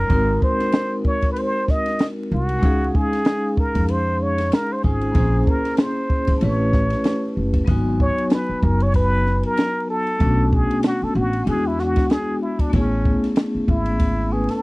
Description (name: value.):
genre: hip hop, jazz-hop.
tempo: 95 BPM.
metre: 4/4.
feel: swing 58% on 16ths.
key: unclear.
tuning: A4 = 441 Hz.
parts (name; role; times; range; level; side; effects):
trumpet with plunger mute; melody; 0.0-14.6 s; C#4 to D#5; -24 LUFS; equal; none.
vibraphone with medium hard mallets; accompaniment; 0.0-14.6 s; F#3 to G#5; -23 LUFS; left 1 dB; none.
upright bass; bass; 0.0-14.5 s; F#1 to E#2; -22 LUFS; equal; none.
compact cocktail drum kit; drums; 0.1-14.6 s; hi-hat, kick drum, ride cymbal, snare drum; -20 LUFS; equal; none.
room: light reverb.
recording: dry, close 1970s-style studio recording, vinyl crackle.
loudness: -17 LUFS.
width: side -22 dB against mid.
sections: 0.0-7.7 A section; 7.7-14.6 B section.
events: muted trumpet solo 7.7-14.6.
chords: 0.1 G#7; 2.6 C#; 5.2 A#m7b5; 6.4 A9; 7.7 G#m7; 10.2 Bm7; 11.5 E7; 12.7 Amaj9.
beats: | 0.10 0.73 1.36 1.99 | 2.63 3.26 3.89 4.52 | 5.15 5.78 6.42 7.05 | 7.68 8.31 8.94 9.57 | 10.21 10.84 11.47 12.10 | 12.73 13.36 13.99.